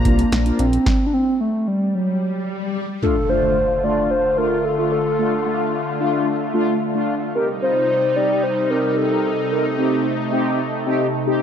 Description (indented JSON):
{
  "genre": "synth-pop",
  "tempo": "111 BPM",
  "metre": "4/4",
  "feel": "straight",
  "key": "unclear",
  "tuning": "A4 = 440 Hz",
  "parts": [
    { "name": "hollow clarinet-like synth lead", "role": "melody", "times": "0.0-10.3 s", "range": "F#3 to D5", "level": "-20 LUFS", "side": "equal", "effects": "chorus, slapback echo" },
    { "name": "lush unison pad", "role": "sustained chords", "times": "0.0-11.4 s", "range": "C3 to Bb5", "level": "-24 LUFS", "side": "equal", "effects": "chorus, phaser" },
    { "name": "chorused synth bass", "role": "bass", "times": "0.0-0.8 s", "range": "Bb1 to C2", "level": "-19 LUFS", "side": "equal", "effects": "none" },
    { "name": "mellow synth brass", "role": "accompaniment", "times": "0.1-11.4 s", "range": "A3 to Bb4", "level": "-22 LUFS", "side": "left 1 dB", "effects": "chorus, phaser" },
    { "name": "electro analog drum machine", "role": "drums", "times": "0.1-1.0 s", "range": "hi-hat, kick drum, snare drum", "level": "-20 LUFS", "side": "equal", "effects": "none" },
    { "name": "swell and impact", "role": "sound effects", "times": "1.7-5.2 s", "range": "none", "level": "-28 LUFS", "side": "left 1 dB", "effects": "none" }
  ],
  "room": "moderate concert hall reverb, RT60 2.4 s",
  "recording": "dark, warm production",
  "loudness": "-17 LUFS",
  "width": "side -8 dB against mid",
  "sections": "0.0-3.0 A section; 3.0-11.4 B section",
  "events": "stop 0.9-3.0; swell 1.7-3.0; impact 3.0-5.2",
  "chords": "0.0 Bbadd9; 0.9 N.C.; 3.0 Dm; 7.3 Cm",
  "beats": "0.32 | 0.86 1.40 1.94 2.48 | 3.02 3.57 4.11 4.65 | 5.19 5.73 6.27 6.81 | 7.35 7.89 8.43 8.97 | 9.51 10.05 10.59 11.13"
}